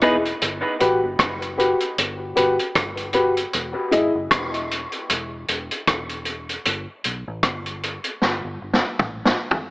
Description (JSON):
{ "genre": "dub reggae", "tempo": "77 BPM", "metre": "4/4", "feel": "swing 57% on 16ths", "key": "unclear", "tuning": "A4 = 440 Hz", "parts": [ { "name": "dark grand piano", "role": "stabs", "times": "0.0-4.1 s", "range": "E4 to D#5", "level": "-21 LUFS", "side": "left 1 dB", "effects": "dub echo" }, { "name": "vintage muted fingered electric bass", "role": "bass", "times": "0.0-9.3 s", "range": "E1 to B1", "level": "-34 LUFS", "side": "equal", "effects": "none" }, { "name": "vintage drum kit", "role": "drums", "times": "0.0-9.7 s", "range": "hi-hat, kick drum, rim click, snare drum, toms", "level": "-21 LUFS", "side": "equal", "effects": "none" } ], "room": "moderate plate reverb, RT60 3.6 s", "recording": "AM radio sound", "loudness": "-20 LUFS", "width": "side -22 dB against mid", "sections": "0.0-9.7 A section", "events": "break 3.5-9.7; drum fill 8.2-9.7", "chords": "0.4 Gmaj7; 3.5 N.C.", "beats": "| 0.41 1.19 1.97 2.75 | 3.53 4.31 5.09 5.87 | 6.65 7.43 8.21 8.99" }